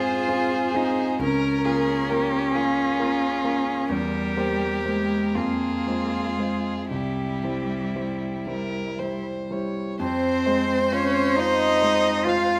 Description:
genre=classical, slow romantic movement for piano quartet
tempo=38-46 BPM (dotted quarters)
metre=6/8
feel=rubato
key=F minor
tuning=A4 = 440 Hz
part: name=rich violin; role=melody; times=0.0-12.6 s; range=E4 to C5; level=-31 LUFS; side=equal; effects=none
part: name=rich cello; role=second line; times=0.0-12.6 s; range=G3 to F4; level=-28 LUFS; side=equal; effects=none
part: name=warm violin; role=second line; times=0.0-12.6 s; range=F4 to F5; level=-32 LUFS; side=equal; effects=none
part: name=warm concert grand piano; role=accompaniment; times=0.0-12.6 s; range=C2 to C5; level=-29 LUFS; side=equal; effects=none
room=moderate recital hall reverb, RT60 1.5 s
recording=close, detailed microphones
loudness=-24 LUFS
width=mono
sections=0.0-10.0 A section; 10.0-12.6 B section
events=none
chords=0.0 Fm/Ab; 1.2 Bbm/Db; 3.9 C7/E; 5.4 Fm; 6.9 C; 10.0 Fm

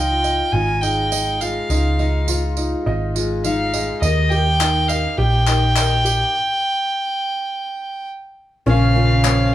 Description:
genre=indie folk with a building arrangement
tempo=103 BPM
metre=4/4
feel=straight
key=unclear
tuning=A4 = 440 Hz
part: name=warm fiddle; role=melody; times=0.0-9.5 s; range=Eb5 to Ab5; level=-20 LUFS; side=right 1 dB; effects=none
part: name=fingerpicked steel-string acoustic guitar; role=accompaniment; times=0.0-4.0 s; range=Ab2 to F4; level=-26 LUFS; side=left 3 dB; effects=none
part: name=warm upright piano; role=arpeggios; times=0.0-9.5 s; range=Db4 to Eb5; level=-25 LUFS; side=right 2 dB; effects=none
part: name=hollow-body short-scale picked electric bass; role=bass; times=0.0-9.5 s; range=Ab1 to Eb2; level=-19 LUFS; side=equal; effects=none
part: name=tambourine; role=percussion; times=0.2-9.4 s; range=none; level=-29 LUFS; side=right 8 dB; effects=none
part: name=picked steel-string acoustic guitar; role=accompaniment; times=4.0-9.5 s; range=Bb2 to G4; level=-28 LUFS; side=left 6 dB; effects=none
part: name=group handclap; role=percussion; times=4.6-9.4 s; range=none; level=-24 LUFS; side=left 9 dB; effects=none
part: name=rich cello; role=second line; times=8.7-9.5 s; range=Db3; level=-22 LUFS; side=right 4 dB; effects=none
part: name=felt-muted upright piano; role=accompaniment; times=8.7-9.5 s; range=Bb1 to Db5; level=-26 LUFS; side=left 8 dB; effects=none
room=light reverb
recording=band playing live in one room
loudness=-16 LUFS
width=side -13 dB against mid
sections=0.0-8.7 A section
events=stop 6.3-8.7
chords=0.0 Dbadd9; 4.0 Eb; 8.7 Bbm

